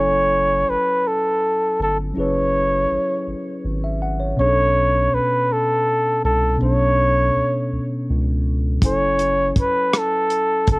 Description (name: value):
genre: slow six-eight R&B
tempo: 54 BPM (dotted quarters)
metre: 6/8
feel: straight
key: F# minor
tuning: A4 = 440 Hz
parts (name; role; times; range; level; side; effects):
- warm flugelhorn; melody; 0.0-10.8 s; A4 to C#5; -18 LUFS; equal; cassette tape
- mellow tine electric piano; accompaniment; 0.0-10.8 s; B2 to G#5; -24 LUFS; equal; wide subtle chorus, cassette tape
- round analog bass; bass; 0.0-10.8 s; F#1 to C#2; -23 LUFS; equal; none
- warm soul drum kit; drums; 8.8-10.8 s; hi-hat, kick drum, rim click; -18 LUFS; equal; cassette tape
room: light reverb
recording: home recording on cassette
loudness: -17 LUFS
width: side -26 dB against mid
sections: 0.0-10.8 A section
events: none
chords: 0.0 F#m9; 4.4 Bm9; 8.8 F#m9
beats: 1.04 | 2.15 3.26 | 4.38 5.49 | 6.60 7.71 | 8.82 9.93